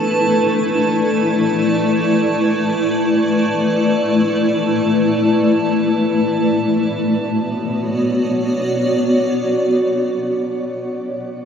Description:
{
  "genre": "ambient",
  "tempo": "free time",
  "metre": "none",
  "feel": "none",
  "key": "B minor",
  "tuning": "A4 = 441 Hz",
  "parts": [
    { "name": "granular cloud pad", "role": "sustained chords", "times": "0.0-10.8 s", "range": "A3 to D5", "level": "-15 LUFS", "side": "left 1 dB", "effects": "built-in reverb, shimmer reverb" },
    { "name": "drifting glass-harmonics texture", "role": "texture", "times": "0.0-6.8 s", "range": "A5", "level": "-26 LUFS", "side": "right 4 dB", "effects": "chorus, built-in reverb, shimmer reverb" }
  ],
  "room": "wet scoring stage reverb, RT60 2.0 s",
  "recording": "none",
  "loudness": "-15 LUFS",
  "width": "side -7 dB against mid",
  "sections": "0.0-6.8 A section; 6.8-10.8 B section",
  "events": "none",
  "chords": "0.0 Asus4; 6.8 Bm"
}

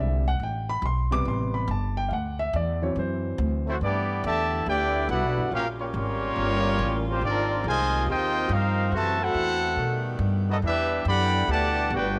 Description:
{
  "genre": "jazz, big band swing",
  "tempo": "141 BPM",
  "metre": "4/4",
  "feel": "swing 65% on 8ths",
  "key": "unclear",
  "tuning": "A4 = 440 Hz",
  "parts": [
    { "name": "warm baby grand piano", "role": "accompaniment", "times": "0.0-3.8 s", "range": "C3 to D6", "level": "-31 LUFS", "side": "equal", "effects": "none" },
    { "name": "upright bass", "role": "bass", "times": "0.0-12.2 s", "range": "G1 to B2", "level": "-30 LUFS", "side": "equal", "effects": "none" },
    { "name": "warm trumpet section", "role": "melody", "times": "3.7-12.2 s", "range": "A3 to B5", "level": "-28 LUFS", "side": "equal", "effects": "none" },
    { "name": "mellow trombone section", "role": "second line", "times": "3.7-12.2 s", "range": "B2 to G4", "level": "-34 LUFS", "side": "equal", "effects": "none" },
    { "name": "clear saxophone section", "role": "sustained chords", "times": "3.8-12.2 s", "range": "C3 to G4", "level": "-38 LUFS", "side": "equal", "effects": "none" }
  ],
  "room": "light reverb, studio reverb",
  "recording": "none",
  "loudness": "-26 LUFS",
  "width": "mono",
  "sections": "0.0-3.8 A section; 3.8-12.2 B section",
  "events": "grand piano solo 0.0-3.8",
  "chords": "0.4 Am9; 2.1 D9; 3.8 G6; 5.5 Gm9b5; 7.2 Ab69; 8.9 F#m7b5; 9.8 B7b13; 10.6 Em9"
}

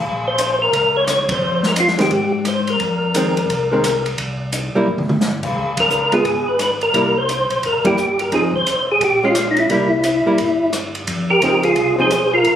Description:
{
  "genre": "soul jazz organ trio",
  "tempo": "174 BPM",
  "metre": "4/4",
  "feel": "swing 63% on 8ths",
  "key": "F harmonic minor",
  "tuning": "A4 = 440 Hz",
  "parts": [
    { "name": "mellow tonewheel organ", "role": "bass", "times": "0.0-12.6 s", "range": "F1 to Ab2", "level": "-26 LUFS", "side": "left 2 dB", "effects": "chorus vibrato, slow rotary speaker" },
    { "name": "open jazz drum kit", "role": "drums", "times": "0.0-12.5 s", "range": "crash cymbal, hi-hat, kick drum, ride cymbal, rim click, snare drum, toms", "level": "-23 LUFS", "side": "equal", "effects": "none" },
    { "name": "percussive tonewheel organ", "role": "melody", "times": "0.3-12.6 s", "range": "Eb4 to Db5", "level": "-16 LUFS", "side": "equal", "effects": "slow rotary speaker, chorus vibrato" },
    { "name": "archtop guitar, miked and amplified", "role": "accompaniment", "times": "2.0-12.1 s", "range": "Eb3 to Ab4", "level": "-19 LUFS", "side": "right 1 dB", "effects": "none" }
  ],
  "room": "moderate studio reverb, RT60 0.8 s",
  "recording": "recorded on a phone in the room, club reverb, compression",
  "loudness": "-15 LUFS",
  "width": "side -9 dB against mid",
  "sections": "0.0-11.1 A section; 11.1-12.6 A section",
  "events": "band accent 1.2, 5.7, 7.8; drum fill 4.9-5.2",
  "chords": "0.0 Bbm; 1.4 Fm7; 4.2 C5; 5.6 Db7(no3); 6.9 C7; 8.3 Fm7; 9.0 Bbm7; 9.7 C7; 11.1 Fm7"
}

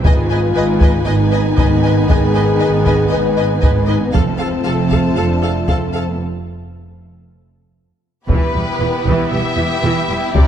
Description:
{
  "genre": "cinematic, epic orchestral film score",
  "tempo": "117 BPM",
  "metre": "4/4",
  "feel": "straight",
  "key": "unclear",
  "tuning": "A4 = 440 Hz",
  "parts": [
    { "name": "mellow French horn section", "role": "sustained chords", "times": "0.0-10.5 s", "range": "G3 to B4", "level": "-21 LUFS", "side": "left 6 dB", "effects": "none" },
    { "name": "rich symphonic string section", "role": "sustained chords", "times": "0.0-10.5 s", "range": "B3 to A5", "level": "-26 LUFS", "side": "equal", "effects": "none" },
    { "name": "dark symphonic double bass section", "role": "bass", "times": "0.0-10.4 s", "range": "E1 to C2", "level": "-21 LUFS", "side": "right 3 dB", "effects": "none" },
    { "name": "warm symphonic cello section", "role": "bass", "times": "0.0-10.4 s", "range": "C2 to G#2", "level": "-21 LUFS", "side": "right 3 dB", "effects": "none" },
    { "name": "taiko ensemble", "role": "drums", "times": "0.0-10.5 s", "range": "none", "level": "-16 LUFS", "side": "equal", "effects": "none" },
    { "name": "warm studio violin section", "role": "melody", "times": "0.1-10.5 s", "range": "B4 to A5", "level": "-26 LUFS", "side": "left 4 dB", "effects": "none" },
    { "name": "rich studio violin section", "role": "second line", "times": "0.1-10.5 s", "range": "E4 to F5", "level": "-26 LUFS", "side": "left 2 dB", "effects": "none" },
    { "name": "rich symphonic viola section", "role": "accompaniment", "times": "0.1-10.5 s", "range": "C3 to B4", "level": "-23 LUFS", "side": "right 2 dB", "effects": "none" },
    { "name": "bright trombone section", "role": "sustained chords", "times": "0.1-6.2 s", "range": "D#3 to B3", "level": "-22 LUFS", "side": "right 2 dB", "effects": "none" }
  ],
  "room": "moderate scoring stage reverb, RT60 2.0 s",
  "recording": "dark, warm production",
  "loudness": "-13 LUFS",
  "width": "side -9 dB against mid",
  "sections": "0.0-8.3 A section; 8.3-10.5 B section",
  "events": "break 6.2-8.3",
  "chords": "0.0 G#m; 4.1 F; 8.3 Em"
}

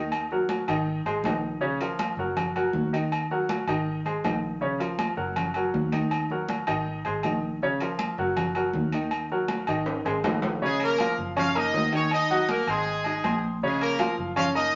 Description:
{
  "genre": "latin, salsa",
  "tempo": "160 BPM",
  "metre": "4/4",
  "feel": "straight",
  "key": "Bb minor",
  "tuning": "A4 = 441 Hz",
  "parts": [
    { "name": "clear concert grand piano", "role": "accompaniment", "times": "0.0-14.8 s", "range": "Db3 to Eb6", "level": "-30 LUFS", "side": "equal", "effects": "none" },
    { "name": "fingered electric bass", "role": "bass", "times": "0.0-14.7 s", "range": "Gb1 to Eb2", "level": "-37 LUFS", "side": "equal", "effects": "none" },
    { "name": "agogo bells and timbales", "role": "percussion", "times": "0.1-14.7 s", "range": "none", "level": "-34 LUFS", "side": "equal", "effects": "none" },
    { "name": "congas", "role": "percussion", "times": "0.1-14.7 s", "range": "none", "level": "-37 LUFS", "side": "equal", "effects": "none" },
    { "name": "brilliant horn section", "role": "melody", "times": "10.6-14.8 s", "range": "Ab3 to F5", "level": "-28 LUFS", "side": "equal", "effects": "none" }
  ],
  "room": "wet studio reverb, RT60 0.8 s",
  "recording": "nothing above 7.6 kHz",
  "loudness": "-27 LUFS",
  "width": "mono",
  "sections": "0.0-10.6 A section; 10.6-14.8 B section",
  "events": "drum fill 9.9-10.6",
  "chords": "0.1 Ebm; 0.9 Ab; 1.6 Bbm; 2.4 Gb; 3.1 Ebm; 3.9 Ab; 4.6 Bbm; 5.4 Gb; 6.1 Ebm; 6.9 Ab; 7.6 Bbm; 8.4 Gb; 9.1 Ebm; 9.9 Ab; 10.6 Bbm; 11.4 Gb; 12.1 Ebm; 12.9 Ab; 13.6 Bbm"
}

